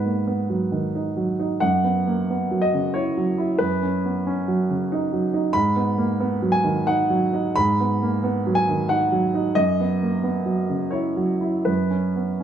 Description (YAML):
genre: neoclassical minimalist piano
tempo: 80-94 BPM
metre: 3/4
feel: rubato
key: G# minor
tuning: A4 = 439 Hz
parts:
  - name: warm baby grand piano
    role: solo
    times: 0.0-12.4 s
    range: F#2 to B5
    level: -20 LUFS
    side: right 1 dB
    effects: none
room: light reverb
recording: small room ambience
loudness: -20 LUFS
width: side -9 dB against mid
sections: 0.0-12.4 A section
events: none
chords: 0.0 G#m7; 1.6 F#7sus4; 3.6 Badd9/F#; 5.5 G#m7; 9.6 F#7sus4; 11.7 Bsus2/F#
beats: 0.28 0.94 | 1.61 2.28 2.94 | 3.60 4.26 4.91 | 5.55 6.19 6.85 | 7.56 8.24 8.90 | 9.57 10.24 10.94 | 11.68 12.42